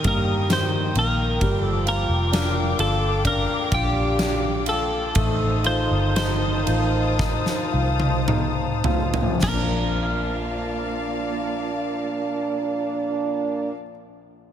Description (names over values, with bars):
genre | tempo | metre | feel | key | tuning
pop ballad | 51-66 BPM | 4/4 | straight | Bb major | A4 = 438 Hz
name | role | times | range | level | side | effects
twelve-string electric guitar | melody | 0.0-13.7 s | G4 to C5 | -26 LUFS | equal | digital delay
mellow French horn section | second line | 0.0-13.7 s | Bb2 to G4 | -29 LUFS | right 4 dB | none
warm baby grand piano | accompaniment | 0.0-14.5 s | Bb1 to Bb4 | -29 LUFS | left 4 dB | none
warm studio string section | sustained chords | 0.0-13.7 s | Bb3 to Eb6 | -30 LUFS | left 3 dB | none
vintage muted fingered electric bass | bass | 0.0-13.7 s | F1 to G2 | -25 LUFS | equal | none
huge arena drum kit | drums | 0.0-9.7 s | crash cymbal, kick drum, ride cymbal, snare drum, toms | -26 LUFS | equal | none
room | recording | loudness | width
light reverb | none | -20 LUFS | side -9 dB against mid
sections
0.0-9.4 A section; 9.4-14.1 B section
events
slowing down 1.4-9.4; drum fill 7.2-9.4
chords
0.0 Eb; 1.4 Gm7; 5.2 F7; 9.4 Bbmaj7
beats
0.50 | 1.41 2.32 3.25 4.19 | 5.16 6.16 7.20 8.29 | 9.43 10.61 11.78 12.96